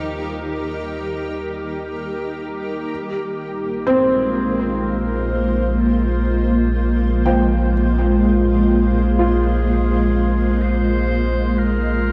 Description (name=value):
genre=ambient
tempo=free time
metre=none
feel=none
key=unclear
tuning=A4 = 441 Hz
part: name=granular cloud pad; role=sustained chords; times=0.0-12.1 s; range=Ab3 to C5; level=-22 LUFS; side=equal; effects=built-in reverb, shimmer reverb
part: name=felt-muted upright piano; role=arpeggios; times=0.0-12.1 s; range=F3 to G5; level=-26 LUFS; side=equal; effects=shimmer reverb, tape echo
part: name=warm sub bass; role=bass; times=0.0-12.1 s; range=Bb1 to Eb2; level=-23 LUFS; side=equal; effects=none
part: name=warm clarinet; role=melody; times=2.9-12.1 s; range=F4 to C5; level=-33 LUFS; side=equal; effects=shimmer reverb, tape echo
room=wet cathedral reverb, RT60 6.0 s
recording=dark, warm production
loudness=-19 LUFS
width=mono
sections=0.0-2.9 A section; 2.9-12.1 B section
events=fade-in on clarinet 2.9-12.1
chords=0.0 Eb; 2.9 Bb5